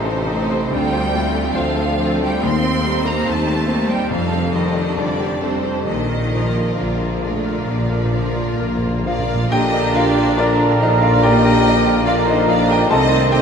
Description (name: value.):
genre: classical, romantic movement for piano and orchestra.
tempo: 64-74 BPM.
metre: 4/4.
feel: rubato.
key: Bb major.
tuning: A4 = 439 Hz.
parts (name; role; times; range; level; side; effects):
clear concert grand piano; melody; 0.0-13.4 s; A1 to A5; -21 LUFS; left 3 dB; none.
warm symphonic violin section; melody; 0.0-13.4 s; C5 to C6; -26 LUFS; right 2 dB; none.
rich symphonic violin section; second line; 0.0-13.4 s; D4 to Eb5; -26 LUFS; equal; none.
clear symphonic viola section; accompaniment; 0.0-13.4 s; F3 to G4; -25 LUFS; right 3 dB; none.
bright symphonic cello section; bass; 0.0-13.4 s; Bb2 to C4; -26 LUFS; right 1 dB; none.
rich symphonic double bass section; bass; 0.0-13.4 s; A1 to F2; -24 LUFS; equal; none.
warm tuba; bass; 0.0-13.4 s; F1 to Eb2; -26 LUFS; equal; none.
timpani; percussion; 5.9-10.8 s; Bb2; -28 LUFS; right 2 dB; none.
warm clarinet; second line; 9.1-13.4 s; D4 to A4; -27 LUFS; left 4 dB; none.
mellow concert flute; second line; 9.5-13.4 s; Bb5 to C6; -22 LUFS; right 6 dB; none.
dark bassoon; accompaniment; 9.5-13.4 s; D3 to Eb3; -24 LUFS; right 4 dB; none.
mellow French horn section; sustained chords; 9.5-13.4 s; C4 to F4; -27 LUFS; left 2 dB; none.
warm trombone section; sustained chords; 9.5-13.4 s; Bb2 to Bb3; -25 LUFS; equal; none.
mellow trumpet; stabs; 9.5-13.4 s; Bb4 to C5; -24 LUFS; left 4 dB; none.
room: wet huge ambient reverb, RT60 7.8 s.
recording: in a vast, echoing space.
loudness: -15 LUFS.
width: side -6 dB against mid.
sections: 0.0-9.5 A section; 9.5-13.4 A section.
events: timpani fill 5.9-9.5.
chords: 0.0 Adim; 0.7 Dm7; 2.4 Cm/Eb; 4.1 F13; 5.9 Bb; 12.9 Adim/C.